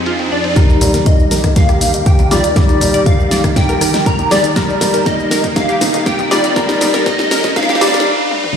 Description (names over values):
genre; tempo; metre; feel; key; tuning
progressive house; 120 BPM; 4/4; straight; Eb major; A4 = 439 Hz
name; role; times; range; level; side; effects
plucky unison lead; melody; 0.0-8.1 s; D5 to Bb5; -18 LUFS; equal; ensemble chorus, sidechain pumping, tape echo
supersaw pad; sustained chords; 0.0-8.0 s; Eb2 to Bb4; -24 LUFS; right 2 dB; sidechain pumping, low-pass filter
analog pluck; arpeggios; 0.0-8.0 s; C4 to D5; -21 LUFS; right 1 dB; chorus, sidechain pumping, tape echo
clear baby grand piano; stabs; 0.0-8.1 s; G3 to Eb5; -18 LUFS; left 2 dB; sidechain pumping, low-pass filter, tape echo
riser; sound effects; 0.0-8.6 s; none; -24 LUFS; right 1 dB; none
pop drum kit; drums; 0.1-8.5 s; cabasa, hi-hat, rim click, snare drum, toms; -18 LUFS; equal; sidechain pumping on hats, low-pass filter on hats, low-pass filter on snare, sidechain pumping on perc, low-pass filter on perc, sidechain pumping on toms, low-pass filter on toms, sidechain pumping on cymbals, low-pass filter on cymbals
electronic kick drum; drums; 0.6-7.7 s; none; -13 LUFS; equal; none
congas and bongos; percussion; 0.6-7.9 s; none; -22 LUFS; left 2 dB; sidechain pumping on perc
room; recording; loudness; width
moderate lush hall reverb, RT60 2.0 s; played on a big sound system in a bare room, stone room reverb, high-pass filter; -10 LUFS; side -7 dB against mid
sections
0.6-8.6 A section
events
riser 0.0-0.6, 0.6-8.6; build-up 0.6-8.6; drum fill 0.6-8.1, 8.3; filter sweep on synth pluck 0.6-8.6; filter sweep on grand piano 0.6-8.6; filter sweep on supersaw synth 0.6-8.6; filter sweep on digital synth lead 0.6-8.6; filter sweep 0.6-8.6; stop 8.1-8.6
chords
0.0 Fm7; 0.6 Ebmaj7